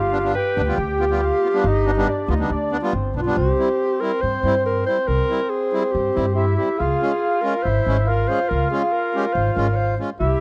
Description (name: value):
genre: klezmer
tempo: 140 BPM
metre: 4/4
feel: straight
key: C phrygian dominant from 3.4 s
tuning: A4 = 439 Hz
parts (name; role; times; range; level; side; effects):
- mellow clarinet; melody; 0.0-10.4 s; F4 to Db5; -25 LUFS; equal; none
- mellow accordion; second line; 0.0-10.4 s; B3 to G4; -26 LUFS; equal; none
- upright bass; bass; 0.0-10.3 s; G1 to G2; -25 LUFS; equal; none
- accordion; accompaniment; 0.1-10.1 s; G3 to Ab4; -28 LUFS; equal; none
room: studio reverb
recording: dry, close 1970s-style studio recording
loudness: -20 LUFS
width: mono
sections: 0.0-3.4 A section; 3.4-10.4 B section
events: none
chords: 0.0 G; 3.4 C; 6.8 Db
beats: 0.35 0.78 1.21 | 1.64 2.07 2.50 2.93 | 3.36 3.79 4.22 4.65 | 5.08 5.51 5.94 6.37 | 6.79 7.22 7.65 8.08 | 8.50 8.93 9.35 9.78 | 10.20